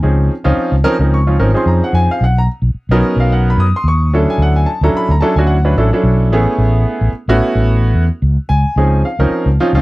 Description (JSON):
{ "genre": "electric jazz fusion", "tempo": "110 BPM", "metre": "4/4", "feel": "swing 55% on 16ths", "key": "unclear", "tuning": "A4 = 440 Hz", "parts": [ { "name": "clear baby grand piano", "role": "accompaniment", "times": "0.0-9.8 s", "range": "F3 to Eb6", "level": "-15 LUFS", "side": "right 1 dB", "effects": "none" }, { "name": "fretless electric bass", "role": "bass", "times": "0.0-9.8 s", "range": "Ab1 to Gb2", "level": "-12 LUFS", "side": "equal", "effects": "wide subtle chorus" } ], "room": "little or no reverb", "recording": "dry, close 1970s-style studio recording", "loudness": "-11 LUFS", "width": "side -20 dB against mid", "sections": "0.0-9.8 A section", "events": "none", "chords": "0.0 Dbmaj9; 2.2 Cbmaj9; 4.1 Dmaj9; 6.3 Amaj9; 8.8 Dbmaj9", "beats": "| 0.03 0.57 1.12 1.67 | 2.21 2.76 3.31 3.85 | 4.40 4.95 5.49 6.04 | 6.59 7.13 7.68 8.22 | 8.77 9.31" }